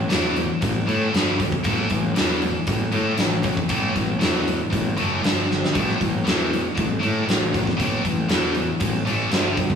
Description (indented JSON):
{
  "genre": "hard rock",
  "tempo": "117 BPM",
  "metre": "4/4",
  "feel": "straight",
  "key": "unclear",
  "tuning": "A4 = 440 Hz",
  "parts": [
    { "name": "heavy high-gain guitar", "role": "riff", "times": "0.0-9.8 s", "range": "G2 to A3", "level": "-24 LUFS", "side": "left 1 dB", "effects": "distortion" },
    { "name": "fuzz picked electric bass", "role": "bass", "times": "0.0-9.7 s", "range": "F#1 to A2", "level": "-26 LUFS", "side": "right 1 dB", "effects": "overdrive" },
    { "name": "huge arena drum kit", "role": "drums", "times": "0.1-9.8 s", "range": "hi-hat, kick drum, snare drum", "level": "-22 LUFS", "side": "left 1 dB", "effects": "none" }
  ],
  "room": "moderate studio reverb, RT60 0.5 s",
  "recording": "rough rehearsal-room recording, warm saturation, studio reverb",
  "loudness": "-19 LUFS",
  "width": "side -7 dB against mid",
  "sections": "0.0-9.8 A section",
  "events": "drum fill 5.5",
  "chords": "0.0 A5; 1.1 G5; 1.6 A5; 5.2 G5; 5.7 A5"
}